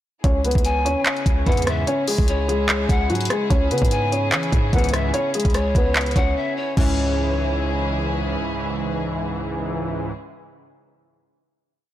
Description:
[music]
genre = hip hop, trap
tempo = 147 BPM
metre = 4/4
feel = half-time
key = C# minor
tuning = A4 = 439 Hz
[part]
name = felt-muted upright piano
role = melody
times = 0.2-8.0 s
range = F#3 to C#5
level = -24 LUFS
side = left 1 dB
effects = digital delay
[part]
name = warm symphonic string section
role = sustained chords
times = 0.2-10.1 s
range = C#3 to G#4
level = -30 LUFS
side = equal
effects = none
[part]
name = warm 808-style bass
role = bass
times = 0.2-8.4 s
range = C#2 to E3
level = -24 LUFS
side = equal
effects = none
[part]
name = trap drum kit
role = drums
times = 0.2-6.9 s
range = crash cymbal, handclaps, hi-hat, kick drum, rim click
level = -21 LUFS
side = equal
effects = none
[part]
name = breathy polished pan flute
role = second line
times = 0.6-8.0 s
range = C#5 to G#5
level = -28 LUFS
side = left 3 dB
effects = digital delay
[part]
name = analog synth brass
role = stabs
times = 1.5-1.9, 4.7-10.1 s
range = C#2 to E3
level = -26 LUFS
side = right 1 dB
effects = chorus
[sound]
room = light reverb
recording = blown-out, overdriven recording, overdrive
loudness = -18 LUFS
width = side -12 dB against mid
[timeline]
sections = 0.2-6.8 hook; 6.8-10.0 final chord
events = break 6.4-6.8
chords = 0.2 C#m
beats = | 0.24 0.65 1.06 1.47 | 1.87 2.28 2.69 3.10 | 3.51 3.91 4.32 4.73 | 5.14 5.55 5.96 6.36 | 6.77 7.18 7.59 8.00 | 8.40 8.81 9.22 9.63

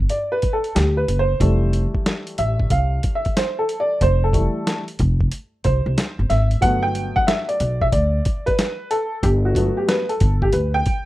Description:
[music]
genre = hip hop, jazz-hop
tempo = 92 BPM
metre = 4/4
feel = swing 66% on 16ths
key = G major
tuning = A4 = 440 Hz
[part]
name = upright bass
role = bass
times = 0.0-10.8 s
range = F1 to D2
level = -19 LUFS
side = equal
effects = none
[part]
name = warm upright piano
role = accompaniment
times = 0.1-11.1 s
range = E3 to G5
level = -21 LUFS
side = equal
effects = plate reverb
[part]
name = boom bap sampler-style drum kit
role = drums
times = 0.1-11.1 s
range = hi-hat, kick drum, snare drum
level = -22 LUFS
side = equal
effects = none
[sound]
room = light reverb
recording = rough home demo mix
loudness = -17 LUFS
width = side -16 dB against mid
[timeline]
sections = 0.0-11.1 A section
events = upright piano solo 0.0-11.1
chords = 0.0 Gmaj7; 1.4 Fmaj9; 6.6 Gmaj7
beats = 0.10 0.75 | 1.41 2.06 2.71 3.36 | 4.01 4.67 5.32 5.97 | 6.62 7.28 7.93 8.58 | 9.23 9.88 10.54

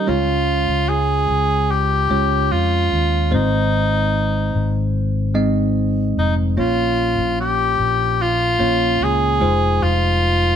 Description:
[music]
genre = pop ballad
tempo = 74 BPM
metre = 4/4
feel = straight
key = unclear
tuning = A4 = 438 Hz
[part]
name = clear cor anglais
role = melody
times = 0.0-10.6 s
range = Eb4 to Ab4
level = -19 LUFS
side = equal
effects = none
[part]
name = bell-like tine electric piano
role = accompaniment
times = 0.0-10.6 s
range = Ab2 to Eb5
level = -22 LUFS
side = right 2 dB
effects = none
[part]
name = fingered electric bass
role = bass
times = 0.1-10.6 s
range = F1 to F2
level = -20 LUFS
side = left 1 dB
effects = none
[sound]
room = moderate stone room reverb, RT60 1.2 s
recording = band playing live in one room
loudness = -16 LUFS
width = side -8 dB against mid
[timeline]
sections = 0.1-10.6 A section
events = none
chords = 0.1 Db; 3.3 Ab; 6.6 Bbm; 9.4 Fm7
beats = | 0.09 0.90 1.71 2.52 | 3.33 4.15 4.96 5.77 | 6.58 7.39 8.20 9.01 | 9.82

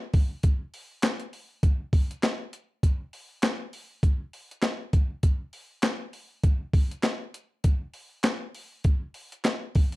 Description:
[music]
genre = funk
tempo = 100 BPM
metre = 4/4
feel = swing 56% on 16ths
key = none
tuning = none
[part]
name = breakbeat sampler-style drum kit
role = drums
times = 0.1-10.0 s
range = handclaps, hi-hat, kick drum, snare drum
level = -23 LUFS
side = equal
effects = none
[sound]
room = light reverb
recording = dry, close 1970s-style studio recording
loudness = -25 LUFS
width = side -20 dB against mid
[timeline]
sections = 0.0-1.6 A section; 1.6-10.0 B section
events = none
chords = none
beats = 0.43 1.03 | 1.63 2.23 2.83 3.43 | 4.03 4.63 5.24 5.84 | 6.44 7.04 7.64 8.25 | 8.85 9.45

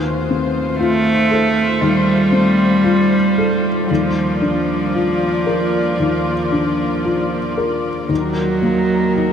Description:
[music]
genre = neoclassical piano and strings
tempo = 57 BPM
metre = 4/4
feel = rubato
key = unclear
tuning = A4 = 442 Hz
[part]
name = dark upright piano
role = accompaniment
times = 0.0-9.3 s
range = Eb2 to Bb4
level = -19 LUFS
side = left 3 dB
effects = none
[part]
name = dark chamber string section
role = sustained chords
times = 0.0-9.3 s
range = Eb3 to D5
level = -22 LUFS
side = left 2 dB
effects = none
[part]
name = rich cello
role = second line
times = 0.8-9.3 s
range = F3 to A3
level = -17 LUFS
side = right 2 dB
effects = none
[sound]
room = wet huge ambient reverb, RT60 7.6 s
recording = dreamy mix soaked in reverb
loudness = -14 LUFS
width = side -8 dB against mid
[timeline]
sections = 0.0-9.3 A section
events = none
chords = 0.0 F/Eb; 3.9 Bb/Eb; 8.1 Ebm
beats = 0.80 1.81 2.84 | 3.89 4.94 5.99 7.05 | 8.10 9.15

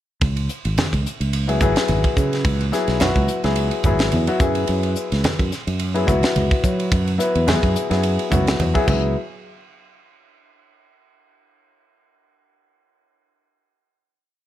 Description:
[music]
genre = electric jazz fusion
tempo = 107 BPM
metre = 4/4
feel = swing 55% on 16ths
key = C# minor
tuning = A4 = 439 Hz
[part]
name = fretless electric bass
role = bass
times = 0.2-9.1 s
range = G#1 to F#3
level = -21 LUFS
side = right 1 dB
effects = lush chorus
[part]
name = tight funk drum kit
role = drums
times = 0.2-9.0 s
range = crash cymbal, hi-hat, kick drum, ride cymbal, snare drum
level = -22 LUFS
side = equal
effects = none
[part]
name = congas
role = percussion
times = 0.2-9.1 s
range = none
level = -26 LUFS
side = right 2 dB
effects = none
[part]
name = warm grand piano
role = accompaniment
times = 1.5-9.1 s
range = F#3 to B4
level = -21 LUFS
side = left 2 dB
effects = none
[sound]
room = light reverb, small room ambience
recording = none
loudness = -17 LUFS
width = side -12 dB against mid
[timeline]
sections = 0.2-9.2 groove; 9.2-11.4 final hit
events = drum fill 8.9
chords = 0.2 C#m7; 9.2 N.C.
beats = | 0.22 0.78 1.33 1.89 | 2.45 3.01 3.56 4.12 | 4.68 5.24 5.80 6.36 | 6.92 7.48 8.04 8.60

